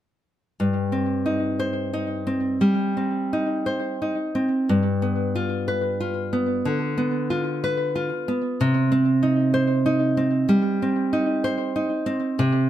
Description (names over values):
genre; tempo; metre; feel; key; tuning
romantic piece for solo classical guitar; 58-64 BPM; 4/4; rubato; C minor; A4 = 444 Hz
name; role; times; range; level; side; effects
nylon-string guitar; solo; 0.6-12.7 s; G2 to C5; -20 LUFS; equal; slapback echo
room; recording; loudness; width
moderate studio reverb, RT60 0.8 s; none; -21 LUFS; side -12 dB against mid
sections
0.6-12.7 A section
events
none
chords
0.6 Cm/G; 4.7 G7; 8.6 Cm